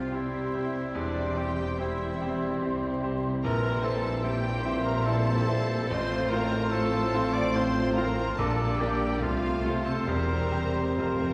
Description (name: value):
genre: classical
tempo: 72 BPM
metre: 3/4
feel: rubato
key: unclear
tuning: A4 = 440 Hz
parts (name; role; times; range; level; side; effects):
- clear baby grand piano; melody; 0.0-11.3 s; A1 to D5; -34 LUFS; equal; none
- warm studio violin section; melody; 0.0-11.3 s; D5 to D6; -42 LUFS; equal; none
- warm oboe; second line; 0.0-11.3 s; D4 to D5; -41 LUFS; equal; none
- warm studio violin section; second line; 0.0-11.3 s; A3 to G4; -42 LUFS; equal; none
- rich studio viola section; accompaniment; 0.0-11.3 s; D4 to D5; -39 LUFS; equal; none
- mellow French horn section; sustained chords; 0.0-11.3 s; A3 to G4; -41 LUFS; equal; none
- warm trombone section; sustained chords; 0.0-11.3 s; A2 to A3; -39 LUFS; equal; none
- clear trumpet section; stabs; 0.0-11.3 s; C5 to D5; -40 LUFS; equal; none
- rich studio cello section; bass; 0.0-11.3 s; E2 to C3; -38 LUFS; equal; none
- warm studio double bass section; bass; 0.0-11.3 s; E1 to C2; -36 LUFS; equal; none
- mellow large flute ensemble; second line; 0.1-11.3 s; C6 to D6; -41 LUFS; equal; none
- warm bassoon; accompaniment; 0.1-11.3 s; E3 to Bb3; -40 LUFS; equal; none
- timpani; percussion; 11.0-11.3 s; F2; -40 LUFS; equal; none
room: wet scoring stage reverb, RT60 1.9 s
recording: heard from further back in the room, vinyl crackle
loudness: -28 LUFS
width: mono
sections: 0.0-11.3 A section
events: timpani fill 11.0-11.3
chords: 0.0 C; 1.0 C/E; 3.4 C7/Bb; 5.9 F/A; 8.4 Gm/Bb; 9.2 F/C; 10.1 C7/E